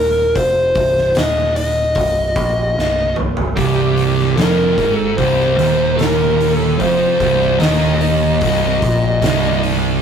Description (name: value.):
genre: stoner and doom metal.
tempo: 74 BPM.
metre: 4/4.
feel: straight.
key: C minor.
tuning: A4 = 439 Hz.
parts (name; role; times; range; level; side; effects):
fuzz lead guitar; melody; 0.0-9.6 s; G4 to Eb5; -16 LUFS; left 1 dB; distortion.
growling picked electric bass; bass; 0.0-10.0 s; C1 to Bb1; -22 LUFS; left 1 dB; overdrive.
oversized low-tuned drum kit; drums; 0.4-9.8 s; hi-hat, kick drum, snare drum, toms; -22 LUFS; equal; none.
thick fuzz guitar; riff; 3.6-10.0 s; C2 to Bb2; -19 LUFS; left 4 dB; distortion.
thick fuzz guitar; riff; 3.6-10.0 s; C2 to Bb2; -18 LUFS; right 8 dB; distortion.
room: light reverb.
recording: rough rehearsal-room recording, tube saturation.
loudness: -13 LUFS.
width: side -7 dB against mid.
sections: 0.0-10.0 A section.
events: drum fill 2.8-3.6.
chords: 0.0 Cm.